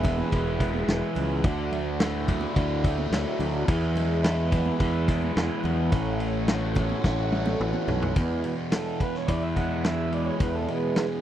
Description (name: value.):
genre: psychedelic rock.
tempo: 107 BPM.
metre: 4/4.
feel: straight.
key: E mixolydian.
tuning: A4 = 440 Hz.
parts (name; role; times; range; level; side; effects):
pedal harmonium; sustained chords; 0.0-11.2 s; E3 to F#5; -33 LUFS; right 6 dB; none.
fuzz guitar; riff; 0.0-11.2 s; E2 to F#4; -29 LUFS; left 1 dB; distortion, phaser.
fuzz fingered electric bass; bass; 0.0-10.7 s; E1 to E2; -28 LUFS; equal; overdrive.
vintage drum kit; drums; 0.0-11.1 s; kick drum, ride cymbal, snare drum, toms; -28 LUFS; equal; none.
congas; percussion; 0.0-8.0 s; none; -36 LUFS; right 9 dB; none.
room: light reverb.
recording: dry, close 1970s-style studio recording.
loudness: -23 LUFS.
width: side -11 dB against mid.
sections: 0.0-8.2 A section; 8.2-11.2 B section.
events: drum fill 7.0-8.2; harmonium solo 8.2-11.2.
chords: 0.0 E; 1.4 Dadd9; 3.7 E; 5.9 A6; 8.2 E.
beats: 0.32 0.88 | 1.44 2.00 2.56 3.12 | 3.68 4.24 4.80 5.36 | 5.92 6.48 7.04 7.60 | 8.16 8.72 9.28 9.84 | 10.40 10.96.